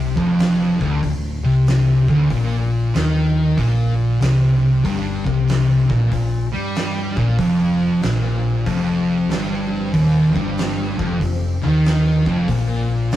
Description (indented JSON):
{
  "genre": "stoner and doom metal",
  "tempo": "94 BPM",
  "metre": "4/4",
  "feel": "swing 66% on 8ths",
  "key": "unclear",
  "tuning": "A4 = 439 Hz",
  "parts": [
    { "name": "thick fuzz guitar", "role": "riff", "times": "0.0-13.2 s", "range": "D2 to G3", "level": "-18 LUFS", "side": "left 2 dB", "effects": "distortion" },
    { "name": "thick fuzz guitar", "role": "riff", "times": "0.0-13.2 s", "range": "D2 to G3", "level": "-21 LUFS", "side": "right 3 dB", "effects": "distortion" },
    { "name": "hollow-body short-scale fingered electric bass", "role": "bass", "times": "0.0-13.2 s", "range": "D1 to G2", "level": "-25 LUFS", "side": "equal", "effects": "overdrive" },
    { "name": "oversized low-tuned drum kit", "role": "drums", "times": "0.2-13.2 s", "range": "hi-hat, kick drum, snare drum", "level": "-26 LUFS", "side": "right 1 dB", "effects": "none" },
    { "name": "soft string machine", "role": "sustained chords", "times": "7.4-13.2 s", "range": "F3 to C5", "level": "-36 LUFS", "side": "right 2 dB", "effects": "none" }
  ],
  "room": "wet studio reverb, RT60 0.6 s",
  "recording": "rough rehearsal-room recording, warm saturation",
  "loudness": "-16 LUFS",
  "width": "side -13 dB against mid",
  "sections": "0.0-13.2 A section",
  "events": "none",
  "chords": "0.0 Dm; 2.3 Gmadd11; 7.4 F5; 12.5 Bb5"
}